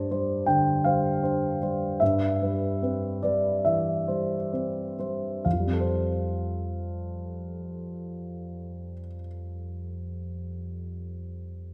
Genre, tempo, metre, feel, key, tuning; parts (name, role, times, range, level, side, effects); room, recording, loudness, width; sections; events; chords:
cinematic; 64-81 BPM; 4/4; rubato; F lydian; A4 = 441 Hz
dark concert grand piano; accompaniment; 0.0-11.7 s; F2 to G5; -28 LUFS; equal
moderate scoring stage reverb, RT60 2.0 s; -28 LUFS; mono
0.0-5.4 A section; 5.4-9.1 B section
slowing down 0.0-5.4
0.0 Gsus4; 2.0 Cmaj7/G; 5.4 Fadd9